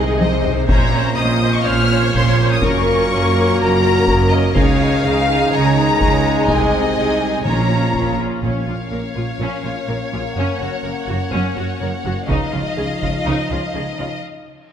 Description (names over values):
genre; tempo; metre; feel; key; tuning
cinematic, epic orchestral film score; 124 BPM; 4/4; straight; Bb minor; A4 = 440 Hz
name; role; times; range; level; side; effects
warm symphonic violin section; melody; 0.0-14.2 s; Eb5 to F6; -24 LUFS; left 2 dB; none
rich symphonic violin section; second line; 0.0-14.2 s; Ab4 to F5; -24 LUFS; left 2 dB; none
rich symphonic viola section; accompaniment; 0.0-14.1 s; Db4 to C5; -24 LUFS; equal; none
bright trombone section; sustained chords; 0.0-8.1 s; Bb2 to Bb3; -24 LUFS; right 2 dB; none
warm French horn section; sustained chords; 0.0-14.2 s; C3 to Ab4; -23 LUFS; left 3 dB; none
rich symphonic cello section; bass; 0.0-14.1 s; Gb2 to Db3; -22 LUFS; right 3 dB; none
rich symphonic double bass section; bass; 0.0-14.1 s; Gb1 to Db2; -23 LUFS; right 3 dB; none
taiko ensemble; drums; 0.2-9.3, 12.3-13.2 s; none; -22 LUFS; left 1 dB; none
timpani; percussion; 7.5-9.1 s; Bb2; -24 LUFS; equal; none
reverse cymbal; sound effects; 14.5-14.7 s; none; -55 LUFS; left 1 dB; none
room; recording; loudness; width
moderate scoring stage reverb, RT60 1.8 s; none; -15 LUFS; side -8 dB against mid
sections
0.0-8.4 A section; 8.4-14.7 B section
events
drum fill 0.0-0.7; break 14.2-14.7; reverse cymbal 14.5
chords
0.0 Ab/C; 0.7 Bbmadd9; 2.6 Gb; 4.6 Dbadd9; 6.5 Ab/C; 7.5 Bbm; 10.4 Gb; 12.3 Dbadd9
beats
0.20 | 0.68 1.17 1.65 2.13 | 2.62 3.10 3.59 4.07 | 4.55 5.04 5.52 6.00 | 6.49 6.97 7.46 7.94 | 8.43 8.91 9.39 9.88 | 10.36 10.84 11.33 11.81 | 12.30 12.78 13.26 13.75 | 14.23 14.71